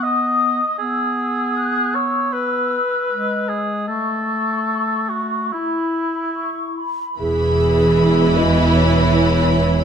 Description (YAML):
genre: cinematic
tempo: 69-80 BPM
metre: 4/4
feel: rubato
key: E major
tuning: A4 = 440 Hz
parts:
  - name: large flute ensemble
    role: second line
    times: 0.0-7.2 s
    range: B5 to F#6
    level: -24 LUFS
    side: left 3 dB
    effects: none
  - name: mellow clarinet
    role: second line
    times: 0.0-6.8 s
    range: G#3 to E4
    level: -25 LUFS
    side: left 1 dB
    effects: none
  - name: mellow oboe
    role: second line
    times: 0.0-6.8 s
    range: E4 to D#5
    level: -22 LUFS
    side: equal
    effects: none
  - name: alto flute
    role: melody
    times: 7.2-9.8 s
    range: G#4 to D#5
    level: -20 LUFS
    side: right 2 dB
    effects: none
  - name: rich studio violin section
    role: melody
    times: 7.2-9.8 s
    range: B5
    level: -26 LUFS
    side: left 3 dB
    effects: none
  - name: warm studio violin section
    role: second line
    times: 7.2-9.8 s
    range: E4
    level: -24 LUFS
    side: left 1 dB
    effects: none
  - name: clear studio viola section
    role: accompaniment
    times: 7.2-9.8 s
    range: E3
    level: -20 LUFS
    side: right 1 dB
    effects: none
  - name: clear studio double bass section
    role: bass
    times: 7.2-9.8 s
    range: E1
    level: -20 LUFS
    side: right 3 dB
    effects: none
  - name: rich studio cello section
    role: bass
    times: 7.2-9.8 s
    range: E2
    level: -18 LUFS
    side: equal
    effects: none
room: light reverb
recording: close, detailed microphones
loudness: -16 LUFS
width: side -7 dB against mid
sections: 0.0-7.2 A section; 7.2-9.8 A section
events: none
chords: 0.0 B; 0.8 E/B; 3.9 A; 5.5 E5; 7.2 E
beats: 0.03 | 0.79 1.57 2.33 3.10 | 3.89 4.68 5.52 6.37 | 7.19 7.99 8.77 9.54